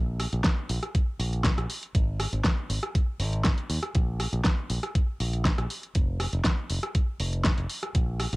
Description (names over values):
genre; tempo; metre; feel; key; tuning
nu-disco, nu disco; 120 BPM; 4/4; straight; unclear; A4 = 443 Hz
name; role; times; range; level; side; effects
modern bright fingered electric bass; bass; 0.0-8.4 s; F1 to Eb2; -28 LUFS; equal; sidechain pumping
pop drum kit; drums; 0.2-8.4 s; hi-hat, rim click, snare drum; -29 LUFS; equal; overdrive, cassette tape
electronic kick drum; drums; 0.5-8.1 s; none; -25 LUFS; equal; overdrive, cassette tape
room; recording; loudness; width
little or no reverb; home recording on cassette; -25 LUFS; side -22 dB against mid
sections
0.0-8.4 A section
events
none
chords
none